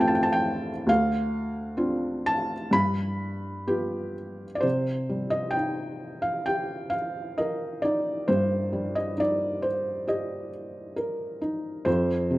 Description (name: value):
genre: classical, lyrical solo piano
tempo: 66 BPM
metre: 4/4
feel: rubato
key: C minor from 4.6 s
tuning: A4 = 440 Hz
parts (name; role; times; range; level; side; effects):
- felt-muted upright piano; solo; 0.0-12.4 s; D2 to B5; -25 LUFS; equal; none
room: light reverb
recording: close, detailed microphones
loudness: -25 LUFS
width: side -18 dB against mid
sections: 0.0-4.6 A section; 4.6-12.4 B section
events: none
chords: 0.0 F; 0.9 Dm7; 2.7 G7; 4.6 Cm7; 11.9 F5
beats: | 0.89 1.81 2.73 3.69 | 4.65 5.57 6.48 7.39 | 8.29 9.18 10.08 10.97 | 11.87